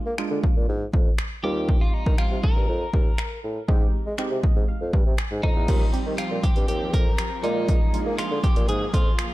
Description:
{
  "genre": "dance-pop",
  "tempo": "120 BPM",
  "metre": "4/4",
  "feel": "straight",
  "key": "Eb major",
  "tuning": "A4 = 440 Hz",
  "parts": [
    { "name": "warm analog keys", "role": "accompaniment", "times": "0.0-8.5 s", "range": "G3 to Bb5", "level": "-31 LUFS", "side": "right 3 dB", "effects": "chorus, sidechain pumping" },
    { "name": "mellow bassoon", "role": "bass", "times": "0.1-9.1 s", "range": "Eb2 to Bb3", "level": "-28 LUFS", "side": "equal", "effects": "sidechain pumping" },
    { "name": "punchy analog drum machine", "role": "drums", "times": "0.2-9.3 s", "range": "crash cymbal, finger snaps, hi-hat, kick drum", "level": "-22 LUFS", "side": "equal", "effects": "none" },
    { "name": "twelve-string electric guitar", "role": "melody", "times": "1.4-9.3 s", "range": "Eb4 to Bb4", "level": "-31 LUFS", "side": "equal", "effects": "spring reverb, tape echo" },
    { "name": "supersaw chords", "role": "sustained chords", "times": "5.7-9.3 s", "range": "F3 to Ab4", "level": "-34 LUFS", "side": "equal", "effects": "sidechain pumping" }
  ],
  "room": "digital ambience",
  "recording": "dark, warm production",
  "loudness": "-20 LUFS",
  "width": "side -17 dB against mid",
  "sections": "0.0-5.7 A section; 5.7-9.3 B section",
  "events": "synth keys fill 4.2-5.7",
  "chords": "0.0 Bb7; 1.4 Eb69; 3.7 Abmaj7; 5.7 Eb69; 7.4 Bb7"
}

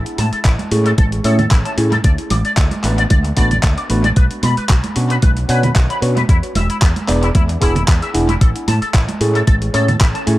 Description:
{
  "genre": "nu-disco, nu disco",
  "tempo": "113 BPM",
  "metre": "4/4",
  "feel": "swing 54% on 16ths",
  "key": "A major",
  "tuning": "A4 = 440 Hz",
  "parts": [
    { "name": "fingered electric bass with an envelope filter", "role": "bass", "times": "0.0-10.4 s", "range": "E1 to B2", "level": "-18 LUFS", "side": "equal", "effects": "none" },
    { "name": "dusty soul sampler-style drum kit", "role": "drums", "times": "0.1-10.4 s", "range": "handclaps, hi-hat", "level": "-24 LUFS", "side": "equal", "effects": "overdrive, dub echo" },
    { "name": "electric guitar with an envelope filter", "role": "riff", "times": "0.2-10.2 s", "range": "B3 to D6", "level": "-23 LUFS", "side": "left 2 dB", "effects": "analog chorus, low-pass filter, dub echo" },
    { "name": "congas", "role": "percussion", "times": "0.2-10.0 s", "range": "none", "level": "-25 LUFS", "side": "right 3 dB", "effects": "none" },
    { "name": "electronic kick drum", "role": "drums", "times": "0.5-10.1 s", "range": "none", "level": "-12 LUFS", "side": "equal", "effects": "overdrive" },
    { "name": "tine electric piano", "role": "accompaniment", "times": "0.7-10.4 s", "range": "A3 to D5", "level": "-21 LUFS", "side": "equal", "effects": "phaser, sidechain pumping, low-pass filter, dub echo" }
  ],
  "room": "light reverb",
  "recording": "echo-heavy mix",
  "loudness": "-13 LUFS",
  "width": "side -16 dB against mid",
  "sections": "0.0-10.4 A section",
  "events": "none",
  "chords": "0.0 Amaj7; 2.0 D6; 4.2 Bmadd9; 6.3 E7; 8.4 Amaj7"
}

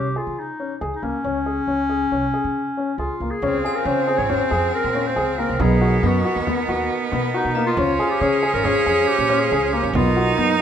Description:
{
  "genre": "contemporary instrumental, chamber music in an uneven meter",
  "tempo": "138 BPM",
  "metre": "5/4",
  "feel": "straight",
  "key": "unclear",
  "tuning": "A4 = 439 Hz",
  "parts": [
    { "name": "clear clarinet", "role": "melody", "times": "0.0-10.6 s", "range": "Db4 to Db5", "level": "-23 LUFS", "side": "left 2 dB", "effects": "none" },
    { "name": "warm baby grand piano", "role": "arpeggios", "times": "0.0-10.5 s", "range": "Bb3 to Ab4", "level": "-24 LUFS", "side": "left 4 dB", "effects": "none" },
    { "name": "upright bass", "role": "bass", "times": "0.0-10.6 s", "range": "Ab1 to Db3", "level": "-25 LUFS", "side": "right 2 dB", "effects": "none" },
    { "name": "bright cello", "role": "second line", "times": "3.4-10.6 s", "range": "Cb4 to Eb4", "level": "-24 LUFS", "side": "right 7 dB", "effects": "none" },
    { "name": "hand-pumped harmonium", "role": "sustained chords", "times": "3.4-10.6 s", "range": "Cb3 to C5", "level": "-28 LUFS", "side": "right 2 dB", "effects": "none" },
    { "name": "frame drum", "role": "percussion", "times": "3.4-10.5 s", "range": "none", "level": "-31 LUFS", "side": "right 3 dB", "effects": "none" },
    { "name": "glockenspiel with brass mallets", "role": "texture", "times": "3.7-8.0 s", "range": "Ab5 to Bb5", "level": "-33 LUFS", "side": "left 4 dB", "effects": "none" }
  ],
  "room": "moderate recital hall reverb, RT60 1.5 s",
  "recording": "none",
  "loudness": "-18 LUFS",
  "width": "side -9 dB against mid",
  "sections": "0.0-3.4 A section; 3.4-10.6 B section",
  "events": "none",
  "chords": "0.0 Db5; 3.4 Dbmaj7; 5.6 Cbmaj7; 7.8 Dbmaj7; 9.9 Cbmaj7"
}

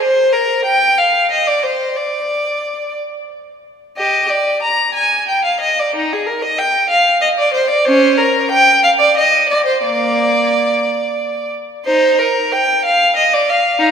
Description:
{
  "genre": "classical, baroque-style suite movement for unaccompanied violin",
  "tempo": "57-64 BPM (dotted quarters)",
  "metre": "6/8",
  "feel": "rubato",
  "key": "unclear",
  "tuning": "A4 = 440 Hz",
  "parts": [
    { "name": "rich violin", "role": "solo", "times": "0.0-13.9 s", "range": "Bb3 to Bb5", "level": "-12 LUFS", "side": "equal", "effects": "none" }
  ],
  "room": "wet church reverb, RT60 2.7 s",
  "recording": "none",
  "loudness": "-12 LUFS",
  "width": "side -7 dB against mid",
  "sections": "0.0-11.9 A section; 11.9-13.9 B section",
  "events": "none",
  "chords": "none"
}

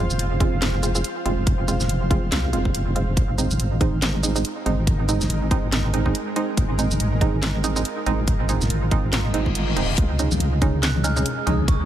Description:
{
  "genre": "deep dubstep",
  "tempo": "141 BPM",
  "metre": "4/4",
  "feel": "swing 57% on 16ths, half-time",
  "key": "unclear",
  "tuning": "A4 = 440 Hz",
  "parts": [
    { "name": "granular cloud pad", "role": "sustained chords", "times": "0.0-11.9 s", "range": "Ab3 to F5", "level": "-31 LUFS", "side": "right 1 dB", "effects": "built-in reverb" },
    { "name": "filtered dub chord stab", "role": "stabs", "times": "0.0-11.6 s", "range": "Ab3 to F4", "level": "-26 LUFS", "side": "right 4 dB", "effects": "chorus, dub echo" },
    { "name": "deep soft wobble bass", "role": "bass", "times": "0.0-11.9 s", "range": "Eb1 to Db2", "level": "-22 LUFS", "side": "equal", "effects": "chorus" },
    { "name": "garage drum kit", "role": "drums", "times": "0.1-11.8 s", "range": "handclaps, hi-hat, shaker, snare drum", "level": "-27 LUFS", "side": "equal", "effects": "studio reverb" },
    { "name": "electronic kick drum", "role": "drums", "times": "0.4-11.8 s", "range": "none", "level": "-21 LUFS", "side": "equal", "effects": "studio reverb" },
    { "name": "reverse cymbal", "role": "sound effects", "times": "9.3-10.0 s", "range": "none", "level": "-31 LUFS", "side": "left 7 dB", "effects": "none" },
    { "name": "wind-like tuned noise texture", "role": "texture", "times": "10.4-11.9 s", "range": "Ab3 to Ab4", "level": "-35 LUFS", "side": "right 1 dB", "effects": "built-in reverb" },
    { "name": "congas", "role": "percussion", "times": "10.3-11.6 s", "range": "none", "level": "-28 LUFS", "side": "left 5 dB", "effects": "none" },
    { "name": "dark detuned synth bell", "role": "melody", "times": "10.8-11.9 s", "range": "Db6 to Gb6", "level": "-29 LUFS", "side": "right 3 dB", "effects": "chorus, phaser, dub echo" }
  ],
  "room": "little or no reverb",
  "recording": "none",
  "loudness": "-19 LUFS",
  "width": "side -11 dB against mid",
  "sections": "0.0-11.9 A section",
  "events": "reverse cymbal 9.3-10.0",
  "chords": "0.0 Fm; 3.2 Ab; 10.0 Dbsus2"
}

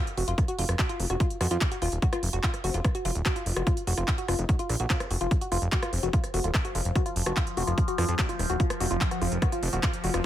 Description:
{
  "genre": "psychedelic trance",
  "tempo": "146 BPM",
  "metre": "4/4",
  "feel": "straight",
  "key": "unclear",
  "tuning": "A4 = 439 Hz",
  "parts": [
    { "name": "woody wave-folded pluck", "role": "riff", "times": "0.0-10.2 s", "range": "F4 to Gb4", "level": "-32 LUFS", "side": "moving between left 4 dB and right 2 dB", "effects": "chorus, auto-pan, sidechain pumping, digital delay" },
    { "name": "techno drum kit", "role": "drums", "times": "0.1-10.2 s", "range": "handclaps, hi-hat, rim click", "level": "-32 LUFS", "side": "equal", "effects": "none" },
    { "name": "fat analog bass", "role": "bass", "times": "0.2-10.2 s", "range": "Eb1 to F2", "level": "-28 LUFS", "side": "equal", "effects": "none" },
    { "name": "electronic kick drum", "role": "drums", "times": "0.4-9.9 s", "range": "none", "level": "-26 LUFS", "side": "equal", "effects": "none" },
    { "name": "vowel-sweep wobble bass", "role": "second line", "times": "1.0-10.3 s", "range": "F3 to F4", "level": "-42 LUFS", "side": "left 3 dB", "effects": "none" },
    { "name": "overtone-sweeping drone", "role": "sustained chords", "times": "6.3-10.3 s", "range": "F3", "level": "-35 LUFS", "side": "equal", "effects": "chorus, built-in reverb, phaser, sidechain pumping" },
    { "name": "zap and riser", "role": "sound effects", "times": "8.2-10.3 s", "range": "none", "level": "-48 LUFS", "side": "equal", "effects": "none" }
  ],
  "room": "little or no reverb",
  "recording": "none",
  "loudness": "-24 LUFS",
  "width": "side -12 dB against mid",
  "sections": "0.0-10.3 A section",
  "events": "none",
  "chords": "0.0 F5"
}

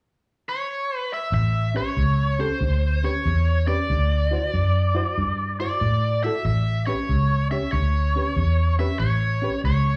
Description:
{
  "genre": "blues",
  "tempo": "94 BPM",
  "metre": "4/4",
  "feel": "swing 66% on 8ths",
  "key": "A mixolydian",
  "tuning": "A4 = 440 Hz",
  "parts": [
    { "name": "biting lead guitar", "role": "melody", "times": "0.5-10.0 s", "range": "C5 to E5", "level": "-28 LUFS", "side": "equal", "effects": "overdrive, slapback echo" },
    { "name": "vintage muted fingered electric bass", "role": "bass", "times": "1.3-10.0 s", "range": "A1 to A2", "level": "-23 LUFS", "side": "equal", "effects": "none" },
    { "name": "barky reed electric piano", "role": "accompaniment", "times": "1.7-9.5 s", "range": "C#4 to C#5", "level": "-33 LUFS", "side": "equal", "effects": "slapback echo" }
  ],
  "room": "little or no reverb",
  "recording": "live gig heard through the venue's PA, club ambience",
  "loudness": "-23 LUFS",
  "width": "mono",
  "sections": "0.0-1.3 A section; 1.3-10.0 B section",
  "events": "none",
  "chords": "0.0 N.C.; 1.3 A7; 3.9 D7; 6.4 A7"
}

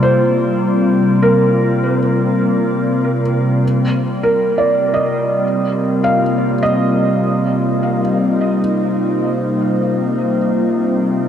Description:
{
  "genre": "ambient",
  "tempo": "50 BPM",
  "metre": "3/4",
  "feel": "straight",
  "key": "C minor",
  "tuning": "A4 = 435 Hz",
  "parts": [
    { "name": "glassy FM pad", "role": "sustained chords", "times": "0.0-11.3 s", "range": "C3 to D5", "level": "-15 LUFS", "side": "equal", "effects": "ensemble chorus, built-in reverb" },
    { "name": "felt-muted upright piano", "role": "arpeggios", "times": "0.0-11.3 s", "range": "Bb4 to F5", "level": "-19 LUFS", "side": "right 1 dB", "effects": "tape echo" },
    { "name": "overtone-sweeping drone", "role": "drone", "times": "4.5-11.3 s", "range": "C3 to C4", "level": "-22 LUFS", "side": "left 2 dB", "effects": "chorus, built-in reverb, phaser" }
  ],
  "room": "wet huge ambient reverb, RT60 7.7 s",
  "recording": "none",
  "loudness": "-13 LUFS",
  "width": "side -9 dB against mid",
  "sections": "0.0-3.6 A section; 3.6-11.3 B section",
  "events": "filter sweep on ambient pad 3.6-11.3",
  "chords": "0.0 Bb/C; 3.6 Cmadd9"
}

